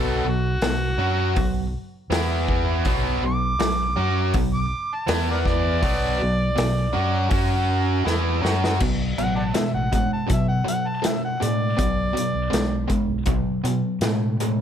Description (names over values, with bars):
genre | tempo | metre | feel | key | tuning
blues rock power trio and southern rock | 81 BPM | 4/4 | straight | B minor | A4 = 444 Hz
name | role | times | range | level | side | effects
overdriven harmonica | melody | 0.0-12.9 s | F#4 to D6 | -27 LUFS | equal | none
overdriven electric guitar | riff | 0.0-14.6 s | B2 to F#4 | -24 LUFS | equal | none
overdriven fingered electric bass | bass | 0.0-14.6 s | A1 to B2 | -25 LUFS | equal | none
vintage drum kit | drums | 0.6-14.6 s | crash cymbal, hi-hat, kick drum, snare drum | -26 LUFS | equal | none
room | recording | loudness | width
light reverb, small room ambience | none | -20 LUFS | side -9 dB against mid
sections
0.0-8.8 A section; 8.8-14.6 B section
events
harmonica solo 0.0-8.8; drum fill 8.1-8.8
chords
0.0 B5; 2.1 E5; 2.9 Bm; 5.1 E5; 5.8 Bm; 7.3 F#5; 8.1 B5; 8.8 Bm7